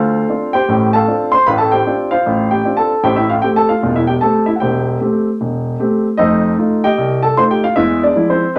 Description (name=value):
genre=solo jazz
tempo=153 BPM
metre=4/4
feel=swing 65% on 8ths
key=A minor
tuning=A4 = 440 Hz
part: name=warm grand piano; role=solo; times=0.0-8.6 s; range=E1 to C6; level=-15 LUFS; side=equal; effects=none
room=wet studio reverb, RT60 0.5 s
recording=none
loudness=-15 LUFS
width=mono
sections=0.0-8.6 A section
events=none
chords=0.0 Dm7; 3.0 Am7; 6.2 F7; 7.8 E7b9